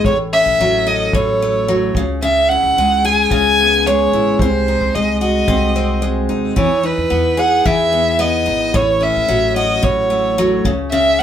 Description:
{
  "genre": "acoustic pop",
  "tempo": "110 BPM",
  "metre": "4/4",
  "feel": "straight",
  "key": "unclear",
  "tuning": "A4 = 440 Hz",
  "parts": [
    { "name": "warm violin", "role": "melody", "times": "0.0-11.2 s", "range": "B4 to G#5", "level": "-15 LUFS", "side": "right 1 dB", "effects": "none" },
    { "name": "picked steel-string acoustic guitar", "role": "accompaniment", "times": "0.0-11.2 s", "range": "A2 to A4", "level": "-17 LUFS", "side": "left 2 dB", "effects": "none" },
    { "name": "upright bass", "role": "bass", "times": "0.0-11.2 s", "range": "G#1 to E2", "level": "-24 LUFS", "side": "equal", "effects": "none" },
    { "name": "kick drum", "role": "drums", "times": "0.0-10.8 s", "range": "none", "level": "-19 LUFS", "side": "equal", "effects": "none" }
  ],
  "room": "wet studio ambience, RT60 0.5 s",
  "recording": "band playing live in one room",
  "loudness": "-13 LUFS",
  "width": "side -9 dB against mid",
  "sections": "0.0-11.2 A section",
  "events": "none",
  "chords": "0.1 A6; 2.0 C#m7; 4.4 G#7/B#; 6.6 Emaj7; 8.7 A6; 10.7 C#m"
}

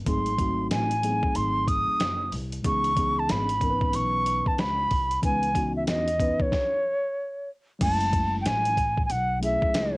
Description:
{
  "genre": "hip hop, jazz-hop",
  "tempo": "93 BPM",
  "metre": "4/4",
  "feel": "swing 62% on 16ths",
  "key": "C# minor",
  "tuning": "A4 = 440 Hz",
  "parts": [
    { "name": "mellow tine electric piano", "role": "accompaniment", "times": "0.0-9.9 s", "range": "E3 to B4", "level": "-30 LUFS", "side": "left 1 dB", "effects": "cassette tape" },
    { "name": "upright bass", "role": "bass", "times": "0.0-10.0 s", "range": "F#1 to E2", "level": "-31 LUFS", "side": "equal", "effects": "none" },
    { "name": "mellow silver concert flute", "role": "melody", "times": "0.1-10.0 s", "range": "C#5 to D#6", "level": "-25 LUFS", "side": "equal", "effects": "cassette tape" },
    { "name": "dusty soul sampler-style drum kit", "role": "drums", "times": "0.1-9.9 s", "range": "crash cymbal, hi-hat, kick drum, snare drum", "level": "-29 LUFS", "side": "equal", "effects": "cassette tape" }
  ],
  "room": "light reverb",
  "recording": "home recording on cassette",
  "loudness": "-23 LUFS",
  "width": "side -23 dB against mid",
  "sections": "0.0-7.8 A section; 7.8-10.0 B section",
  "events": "stop 6.5-7.8",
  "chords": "0.1 G#7b9; 2.6 C#m9; 7.8 F#m9"
}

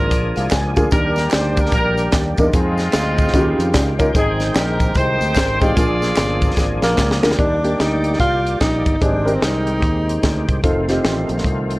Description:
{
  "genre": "uptempo gospel",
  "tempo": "148 BPM",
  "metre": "4/4",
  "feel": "swing 62% on 8ths",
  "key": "Eb major",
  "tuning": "A4 = 443 Hz",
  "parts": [
    { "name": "clear horn section", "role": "melody", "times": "0.0-7.0 s", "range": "Ab3 to D5", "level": "-21 LUFS", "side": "equal", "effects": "none" },
    { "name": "overdriven tonewheel organ", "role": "sustained chords", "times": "0.0-11.8 s", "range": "Db3 to G5", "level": "-25 LUFS", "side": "right 1 dB", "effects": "chorus vibrato, slow rotary speaker" },
    { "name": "fingered electric bass", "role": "bass", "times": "0.0-11.8 s", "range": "F1 to F2", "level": "-22 LUFS", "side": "equal", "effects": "none" },
    { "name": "crisp fusion drum kit", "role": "drums", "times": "0.1-11.8 s", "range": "hi-hat, kick drum, snare drum", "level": "-19 LUFS", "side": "equal", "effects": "none" },
    { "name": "tambourine and handclaps", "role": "percussion", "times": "0.1-7.3 s", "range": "none", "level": "-32 LUFS", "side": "right 3 dB", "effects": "none" },
    { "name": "warm upright piano", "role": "accompaniment", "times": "0.4-11.4 s", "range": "Ab2 to Ab5", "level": "-20 LUFS", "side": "equal", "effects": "none" },
    { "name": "warm tenor saxophone", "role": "melody", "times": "6.8-10.5 s", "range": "Bb3 to F4", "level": "-20 LUFS", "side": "equal", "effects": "none" }
  ],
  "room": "light reverb, small room ambience",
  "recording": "worn, warbling old tape, cassette tape, warbly pitch drift, lossy compression artefacts",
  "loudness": "-15 LUFS",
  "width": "side -20 dB against mid",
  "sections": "0.0-7.4 A section; 7.4-11.8 B section",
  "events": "upright piano fill 0.1-0.9; drum fill 6.6-7.4",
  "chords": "0.0 Bb7; 0.9 Ebmaj7; 2.5 Fm7; 3.3 Eb9; 4.1 Abmaj7; 5.8 Bb7; 7.4 Ebmaj7; 9.0 Abmaj7; 10.6 F7"
}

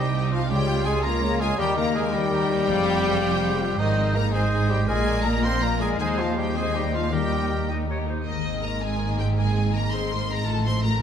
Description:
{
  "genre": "cinematic, heroic adventure film score",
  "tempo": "109 BPM (dotted quarters)",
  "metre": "12/8",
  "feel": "straight",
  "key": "Ab major",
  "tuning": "A4 = 440 Hz",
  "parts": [
    { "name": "warm symphonic violin section", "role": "melody", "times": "0.0-11.0 s", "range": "Eb5 to C6", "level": "-33 LUFS", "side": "left 2 dB", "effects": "none" },
    { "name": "flute section", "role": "second line", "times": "0.0-8.1 s", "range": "Db5 to F5", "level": "-36 LUFS", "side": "equal", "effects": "none" },
    { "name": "warm clarinet", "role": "second line", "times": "0.0-8.3 s", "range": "Eb4 to Eb5", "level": "-33 LUFS", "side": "equal", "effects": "none" },
    { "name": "warm cor anglais", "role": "second line", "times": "0.0-7.7 s", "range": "Eb4 to C5", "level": "-31 LUFS", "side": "right 2 dB", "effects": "none" },
    { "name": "warm symphonic violin section", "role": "second line", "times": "0.0-11.0 s", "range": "Eb4 to C6", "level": "-34 LUFS", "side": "left 2 dB", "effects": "none" },
    { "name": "warm studio viola section", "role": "accompaniment", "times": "0.0-11.0 s", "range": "Ab3 to F5", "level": "-33 LUFS", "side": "equal", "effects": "none" },
    { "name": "warm French horn section", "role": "sustained chords", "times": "0.0-7.7 s", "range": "Eb3 to C4", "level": "-26 LUFS", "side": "left 4 dB", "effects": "none" },
    { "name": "concert harp", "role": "arpeggios", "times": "0.0-11.0 s", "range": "Ab2 to C6", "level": "-32 LUFS", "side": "left 8 dB", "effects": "none" },
    { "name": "rich symphonic double bass section", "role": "bass", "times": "0.0-11.0 s", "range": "F1 to Eb2", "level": "-28 LUFS", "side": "right 3 dB", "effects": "none" },
    { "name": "warm symphonic cello section", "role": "bass", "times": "0.0-11.0 s", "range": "C2 to Bb2", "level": "-29 LUFS", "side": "right 3 dB", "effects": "none" }
  ],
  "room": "moderate scoring stage reverb, RT60 1.7 s",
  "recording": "none",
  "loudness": "-21 LUFS",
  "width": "side -8 dB against mid",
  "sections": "0.0-8.3 A section; 8.3-11.0 B section",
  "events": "none",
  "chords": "0.5 Db; 1.6 Eb; 2.7 Fm; 3.8 Ab; 4.9 Bb; 6.0 Ab/Eb; 7.1 Eb; 8.3 Abadd9; 10.5 F/A"
}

